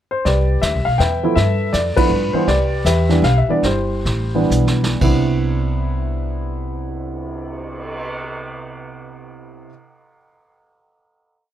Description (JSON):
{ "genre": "jazz piano trio", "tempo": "113-162 BPM", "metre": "3/4", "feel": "swing 64% on 8ths", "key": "C major", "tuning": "A4 = 442 Hz", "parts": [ { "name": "dark baby grand piano", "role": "melody", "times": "0.1-9.7 s", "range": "C3 to G5", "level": "-20 LUFS", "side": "equal", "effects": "none" }, { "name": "upright bass", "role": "bass", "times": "0.3-9.7 s", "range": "G1 to G2", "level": "-20 LUFS", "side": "equal", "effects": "none" }, { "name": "vintage brush drum kit", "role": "drums", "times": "0.3-8.1 s", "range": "brushed snare drum, crash cymbal, cymbal swell, hi-hat, kick drum, ride cymbal, snare drum", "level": "-25 LUFS", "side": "right 1 dB", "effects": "none" } ], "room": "little or no reverb", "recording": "close, detailed microphones", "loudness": "-16 LUFS", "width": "side -11 dB against mid", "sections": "0.0-0.3 pickup bar; 0.3-5.0 A section; 5.0-8.2 final chord", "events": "band accent 1.9; slowing down 2.5-5.0; drum fill 4.5-5.0", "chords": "0.3 Cmaj9; 1.4 G13; 2.5 Cmaj9" }